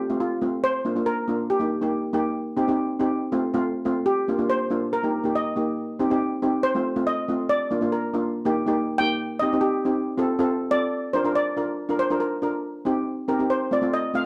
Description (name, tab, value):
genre	calypso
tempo	140 BPM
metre	4/4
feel	straight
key	unclear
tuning	A4 = 440 Hz
part	steel pan	melody	0.0-14.2 s	F4 to G5	-28 LUFS	equal	none
part	steel pan	accompaniment	0.1-14.3 s	A3 to Bb4	-26 LUFS	equal	none
room	moderate small room reverb, RT60 0.5 s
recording	none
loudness	-24 LUFS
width	mono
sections	0.0-12.6 A section; 12.6-14.3 B section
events	steel pan solo 0.0-12.6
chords	0.0 F; 0.6 Bb; 1.5 Eb; 2.3 Cm; 3.2 F; 4.1 Bb; 4.9 Eb; 5.8 Cm; 6.6 F; 7.5 Bb; 8.4 Eb; 9.2 Cm; 10.1 F; 10.9 Bb; 12.6 Cm; 13.5 F